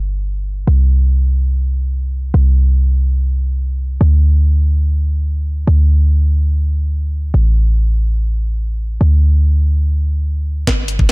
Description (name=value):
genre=future bass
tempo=free time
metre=none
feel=none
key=unclear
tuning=A4 = 440 Hz
part: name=warm 808-style bass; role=bass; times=0.0-11.1 s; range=G1 to D2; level=-12 LUFS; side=equal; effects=tube saturation, sidechain pumping
part: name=electronic kick drum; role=drums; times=10.7-11.1 s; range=none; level=-13 LUFS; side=equal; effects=small room ambience
part: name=trap drum kit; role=drums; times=10.7-11.1 s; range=hi-hat, snare drum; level=-18 LUFS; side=equal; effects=high-pass filter on snare, low-pass filter on snare, small room ambience, high-pass filter on hats, low-pass filter on hats
room=digital ambience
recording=dark, warm production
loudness=-12 LUFS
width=side -32 dB against mid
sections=0.0-10.7 A section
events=drum fill 10.7-11.1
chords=none